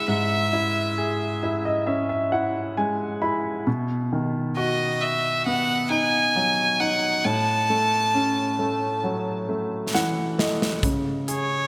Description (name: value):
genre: pop ballad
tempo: 67 BPM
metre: 4/4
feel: straight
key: C# minor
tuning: A4 = 439 Hz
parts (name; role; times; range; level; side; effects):
- bright violin; melody; 0.0-11.7 s; C#5 to A5; -26 LUFS; equal; none
- clear baby grand piano; accompaniment; 0.0-11.7 s; G#2 to B5; -27 LUFS; equal; none
- modern studio drum kit; drums; 9.9-11.5 s; hi-hat, kick drum, snare drum; -28 LUFS; equal; gated reverb
room: wet lush hall reverb, RT60 2.8 s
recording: bright 1980s-style digital production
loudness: -24 LUFS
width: mono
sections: 0.0-11.7 A section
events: grand piano fill 1.0-3.7, 9.5-10.8; drum fill 9.9-10.8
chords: 0.0 C#m; 3.7 B; 7.3 F#m7/A; 10.8 C#5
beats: | 0.09 0.98 1.88 2.77 | 3.67 4.56 5.46 6.36 | 7.25 8.15 9.04 9.94 | 10.83